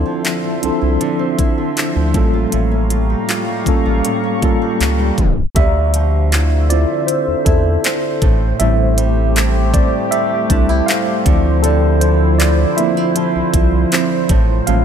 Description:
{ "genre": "contemporary R&B", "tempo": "79 BPM", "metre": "4/4", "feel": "straight", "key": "D minor", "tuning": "A4 = 440 Hz", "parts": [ { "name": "mellow tine electric piano", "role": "accompaniment", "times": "0.0-14.8 s", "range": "F3 to A5", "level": "-18 LUFS", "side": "equal", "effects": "medium stereo tremolo" }, { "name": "deep dark ambient pad", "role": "sustained chords", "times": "0.0-14.8 s", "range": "C#3 to C#6", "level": "-21 LUFS", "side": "equal", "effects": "chorus, built-in reverb" }, { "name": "nylon-string guitar", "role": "arpeggios", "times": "0.0-14.8 s", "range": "A2 to F4", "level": "-22 LUFS", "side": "right 6 dB", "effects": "tape echo" }, { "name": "round analog bass", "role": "bass", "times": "0.0-14.8 s", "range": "A1 to E2", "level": "-16 LUFS", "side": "equal", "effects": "none" }, { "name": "trap drum kit", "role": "drums", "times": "0.2-14.8 s", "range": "handclaps, hi-hat, kick drum", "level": "-17 LUFS", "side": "equal", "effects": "none" } ], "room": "light reverb, digital ambience", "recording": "tape stop", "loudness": "-13 LUFS", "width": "side -8 dB against mid", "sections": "0.0-5.6 A section; 5.6-14.8 B section", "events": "tape stop 5.2-5.6; tine electric piano solo 5.6-14.8", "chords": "0.0 Dm9; 2.1 A7b9b13; 5.6 Dm9; 8.2 Am7; 11.3 Dm9; 14.3 A7b9b13" }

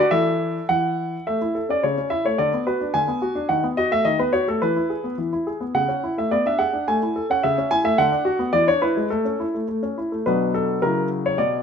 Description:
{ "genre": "classical-period piano sonatina", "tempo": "107 BPM", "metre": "2/4", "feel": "straight", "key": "A major", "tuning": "A4 = 442 Hz", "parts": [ { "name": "clear baby grand piano", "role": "solo", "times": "0.0-11.6 s", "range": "B2 to G#5", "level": "-19 LUFS", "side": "equal", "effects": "none" } ], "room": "moderate stone room reverb, RT60 1.2 s", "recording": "minimal, uncompressed stereo recording", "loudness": "-19 LUFS", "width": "side -7 dB against mid", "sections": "0.0-1.3 A section; 1.3-10.3 B section; 10.3-11.6 C section", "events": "none", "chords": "0.1 A5/E; 0.7 N.C.; 1.3 A; 1.8 A/C#; 2.4 Bm/D; 3.5 B7/D#; 4.6 E; 5.8 A/C#; 6.3 G#dim/B; 6.9 A; 7.4 A/C#; 8.0 Bm/D; 8.5 E7; 9.1 A; 10.3 Bm; 10.8 F#7/C#" }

